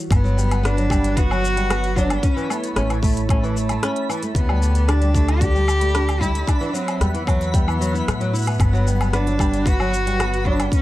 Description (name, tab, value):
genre	folktronica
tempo	113 BPM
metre	4/4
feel	straight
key	G major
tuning	A4 = 437 Hz
part	warm analog pad	sustained chords	0.0-10.8 s	F#3 to A5	-30 LUFS	equal	chorus, vintage 12-bit sampler grit, plate reverb
part	rich cello	melody	0.1-10.8 s	A3 to G4	-24 LUFS	equal	tape echo, plate reverb
part	upright bass	bass	0.1-10.7 s	G1 to A2	-20 LUFS	equal	none
part	electronic kick drum	drums	0.1-10.8 s	none	-20 LUFS	equal	none
part	organic electronic drum kit	drums	0.1-10.8 s	hi-hat, rim click, shaker, woodblock	-28 LUFS	left 1 dB	none
part	twinkling granular texture	texture	0.5-10.8 s	B5	-35 LUFS	right 2 dB	built-in reverb, plate reverb
part	flamenco guitar	arpeggios	0.2-10.7 s	E3 to E4	-26 LUFS	equal	vintage 12-bit sampler grit, plate reverb
room	light reverb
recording	dark, warm production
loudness	-17 LUFS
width	side -16 dB against mid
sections	0.1-10.8 A section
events	none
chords	0.1 Gmaj7; 2.2 A; 4.4 Dsus4; 6.5 Esus2; 8.6 Gmaj7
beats	| 0.10 0.64 1.17 1.70 | 2.23 2.76 3.29 3.82 | 4.35 4.88 5.42 5.95 | 6.48 7.01 7.54 8.07 | 8.60 9.13 9.66 10.19 | 10.72